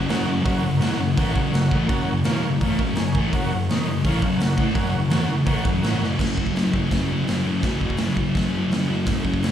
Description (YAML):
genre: garage rock duo or trio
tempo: 167 BPM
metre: 4/4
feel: straight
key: F# major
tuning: A4 = 440 Hz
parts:
  - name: thick fuzz guitar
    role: riff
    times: 0.0-9.5 s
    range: E2 to A3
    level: -21 LUFS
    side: equal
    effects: distortion, slapback echo
  - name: overdriven combo organ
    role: sustained chords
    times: 0.1-6.1 s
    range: A#4 to G#5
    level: -30 LUFS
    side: right 1 dB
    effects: none
  - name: raw garage drum kit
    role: drums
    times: 0.1-9.5 s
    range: crash cymbal, hi-hat, kick drum, snare drum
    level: -24 LUFS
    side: equal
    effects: none
room: moderate club reverb, RT60 0.6 s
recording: live gig heard through the venue's PA, club reverb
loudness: -19 LUFS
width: side -10 dB against mid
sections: 0.4-6.2 A section; 6.2-9.5 B section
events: drum fill 6.0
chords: 0.4 F#; 6.2 F#5